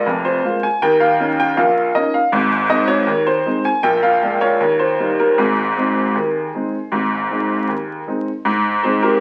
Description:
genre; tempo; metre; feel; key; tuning
ragtime piano; 79 BPM; 2/4; straight; Ab major; A4 = 443 Hz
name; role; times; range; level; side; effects
bright upright piano; solo; 0.0-9.2 s; F1 to Ab5; -17 LUFS; equal; none
room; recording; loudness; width
wet studio reverb, RT60 0.7 s; very old 78 rpm record, vinyl crackle; -17 LUFS; mono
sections
0.0-8.4 A section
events
none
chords
0.0 Bb5; 0.8 Eb5; 2.3 Ab; 3.8 Bb7; 4.6 Eb; 5.4 Ab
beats
0.06 | 0.81 1.56 | 2.32 3.07 | 3.83 4.59 | 5.36 6.13 | 6.90 7.67 | 8.44 9.20

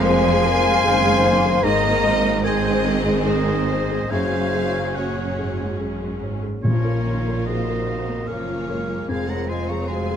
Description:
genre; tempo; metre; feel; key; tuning
cinematic; 74 BPM; 3/4; rubato; Bb minor; A4 = 438 Hz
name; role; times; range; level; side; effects
rich studio violin section; melody; 0.0-10.2 s; Bb4 to Bb5; -27 LUFS; left 2 dB; none
mellow clarinet; second line; 0.0-10.2 s; Ab4 to Db5; -32 LUFS; left 1 dB; none
mellow hollow silver concert flute; second line; 0.0-10.2 s; F4 to F5; -28 LUFS; left 2 dB; none
rich studio violin section; second line; 0.0-10.2 s; Bb3 to Ab4; -31 LUFS; equal; none
warm oboe; second line; 0.0-10.2 s; Db5 to Db6; -27 LUFS; right 2 dB; none
felt-muted upright piano; accompaniment; 0.0-10.2 s; F2 to F5; -27 LUFS; left 3 dB; none
rich studio viola section; accompaniment; 0.0-10.2 s; Db3 to Db4; -28 LUFS; right 1 dB; none
mellow French horn section; sustained chords; 0.0-10.2 s; Db4 to Db5; -27 LUFS; left 5 dB; none
rich studio cello section; bass; 0.0-10.2 s; F2 to Bb2; -28 LUFS; right 3 dB; none
rich studio double bass section; bass; 0.0-10.2 s; F1 to Bb1; -27 LUFS; right 4 dB; none
timpani; percussion; 0.0-0.4, 6.6-7.8 s; F2 to Bb2; -26 LUFS; equal; none
room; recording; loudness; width
light reverb; close, detailed microphones; -18 LUFS; side -8 dB against mid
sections
0.0-10.2 A section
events
none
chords
0.0 Fm; 1.6 Abadd9; 4.1 Gbsus2; 6.6 Bbm; 9.1 Fm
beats
0.02 0.84 | 1.63 2.44 3.25 | 4.11 4.96 5.80 | 6.63 7.46 8.28 | 9.09 9.89

